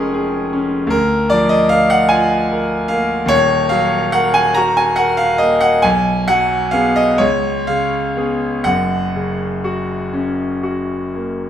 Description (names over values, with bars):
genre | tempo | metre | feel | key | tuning
classical, romantic nocturne for solo piano | 38-52 BPM (dotted quarters) | 6/8 | rubato | F# major | A4 = 439 Hz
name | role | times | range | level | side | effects
bright concert grand piano | solo | 0.0-11.5 s | D#1 to A#5 | -14 LUFS | equal | none
room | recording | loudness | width
moderate recital hall reverb, RT60 1.4 s | none | -14 LUFS | side -10 dB against mid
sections
0.0-11.5 A section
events
none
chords
0.0 C#/E#; 0.9 A#7/D; 3.3 D#m; 5.8 G#m7/B; 7.2 C#7; 8.7 F#